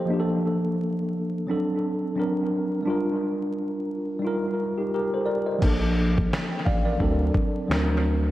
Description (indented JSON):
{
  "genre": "lo-fi hip hop",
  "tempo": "87 BPM",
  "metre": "4/4",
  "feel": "swing 58% on 16ths",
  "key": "Bb major",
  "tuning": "A4 = 442 Hz",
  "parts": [
    { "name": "tine electric piano", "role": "accompaniment", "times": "0.0-8.3 s", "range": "F3 to G5", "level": "-24 LUFS", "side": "equal", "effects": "fast stereo tremolo, analog delay" },
    { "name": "saturated sub bass", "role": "bass", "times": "5.6-8.3 s", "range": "A1 to D2", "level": "-24 LUFS", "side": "equal", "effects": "none" },
    { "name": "dusty soul sampler-style drum kit", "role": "drums", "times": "5.6-7.9 s", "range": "crash cymbal, finger snaps, kick drum, snare drum", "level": "-26 LUFS", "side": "equal", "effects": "analog delay" }
  ],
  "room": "light reverb",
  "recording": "echo-heavy mix, vinyl crackle",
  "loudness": "-23 LUFS",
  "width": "side -15 dB against mid",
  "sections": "0.0-5.6 A section; 5.6-8.3 B section",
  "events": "hi-hats muted 5.6-8.3",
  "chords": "0.1 Bbmaj7; 1.5 D7; 2.2 D7b13; 2.9 Gm7; 4.2 F9sus4; 5.6 Bbmaj7; 7.0 D7; 7.7 D7b13"
}